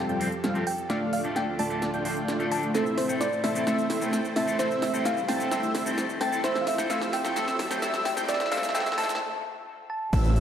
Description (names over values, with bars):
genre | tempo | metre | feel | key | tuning
EDM, festival progressive house | 130 BPM | 4/4 | straight | unclear | A4 = 440 Hz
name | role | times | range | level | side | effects
thumb-piano-like synth pluck | melody | 0.0-10.1 s | A4 to A5 | -30 LUFS | equal | chorus, tape echo
supersaw pad | sustained chords | 0.0-10.4 s | D2 to C5 | -37 LUFS | right 1 dB | sidechain pumping
wide unison lead | arpeggios | 0.0-10.4 s | E6 to A6 | -35 LUFS | equal | sidechain pumping, tape echo
dense compressed supersaw | riff | 0.0-10.4 s | G3 to A5 | -29 LUFS | equal | sidechain pumping, low-pass filter, tape echo
big-room dance drum kit | drums | 0.1-10.4 s | crash cymbal, hi-hat, shaker, snare drum | -34 LUFS | equal | overdrive, high-pass filter on snare, high-pass filter on hats, high-pass filter on perc, high-pass filter on cymbals, high-pass filter on room
electric guitar at the edge of break-up | accompaniment | 0.2-9.1 s | A2 to C5 | -35 LUFS | left 1 dB | lush chorus, sidechain pumping, tape echo
riser and downlifter | sound effects | 3.9-10.4 s | none | -40 LUFS | equal | none
wide detuned saw bass | bass | 10.1-10.4 s | A1 | -22 LUFS | equal | chorus, sidechain pumping
electronic kick drum | drums | 10.1-10.2 s | none | -24 LUFS | equal | overdrive
room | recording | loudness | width
moderate lush hall reverb, RT60 1.6 s, digital ambience | high-pass filter | -24 LUFS | side -9 dB against mid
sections
0.0-10.1 A section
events
build-up 0.0-10.1; drum fill 0.0-9.2; filter sweep on supersaw synth 0.0-10.1; filter sweep on analog synth lead 0.0-10.1; filter sweep 0.0-10.1; riser 3.9-9.2; break 9.2-10.1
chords
0.0 Fadd9; 0.9 Dm; 2.7 Am; 6.4 Fadd9; 8.3 Dm